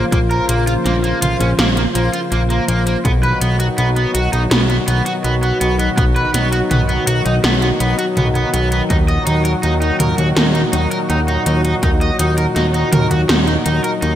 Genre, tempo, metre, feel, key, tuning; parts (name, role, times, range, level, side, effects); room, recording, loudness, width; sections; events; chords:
synthwave; 82 BPM; 4/4; straight; A4 = 440 Hz
warm analog pad; sustained chords; 0.0-14.2 s; Bb2 to C5; -19 LUFS; left 1 dB; chorus, sidechain pumping
crunchy overdriven guitar; riff; 0.0-14.1 s; Bb3 to Eb5; -21 LUFS; right 1 dB; lush chorus, digital delay
fat analog bass; bass; 0.0-14.2 s; Bb1 to Eb2; -17 LUFS; equal; tube saturation
80s electronic pad drums; drums; 0.1-14.2 s; hi-hat, snare drum, toms; -20 LUFS; equal; gated reverb on snare and toms, overdrive, gated reverb
electronic kick drum; drums; 0.1-12.0 s; -18 LUFS; equal; overdrive
moderate lush hall reverb, RT60 2.0 s; bright 1980s-style digital production; -13 LUFS; side -11 dB against mid
0.0-14.2 A section
0.0 Bbmadd9; 3.0 B; 8.9 Ebm